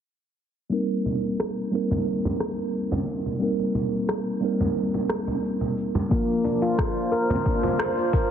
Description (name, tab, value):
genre	organic downtempo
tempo	89 BPM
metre	4/4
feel	straight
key	C minor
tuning	A4 = 438 Hz
part	mellow tine electric piano	accompaniment	0.7-7.1 s	F3 to Bb4	-26 LUFS	right 1 dB	medium stereo tremolo, sidechain pumping, low-pass filter, digital delay
part	electronic cabasa and rim click	drums	0.7-8.3 s	none	-31 LUFS	equal	none
part	congas	percussion	1.1-7.8 s	none	-29 LUFS	equal	none
part	warbly tape-like pad	sustained chords	6.9-8.3 s	Bb3 to C5	-29 LUFS	equal	chorus, built-in reverb, phaser, sidechain pumping
part	handpan	arpeggios	6.1-8.3 s	Bb3 to Bb4	-24 LUFS	left 1 dB	digital delay
part	electronic kick drum	drums	6.1-8.3 s	none	-24 LUFS	left 1 dB	none
room	moderate concert hall reverb, RT60 2.1 s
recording	heavily compressed radio sound, low-pass filter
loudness	-22 LUFS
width	side -8 dB against mid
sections	0.7-8.3 A section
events	filter sweep on tine electric piano 0.7-8.3; filter sweep 0.7-8.3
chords	0.7 Cm7; 6.1 Bb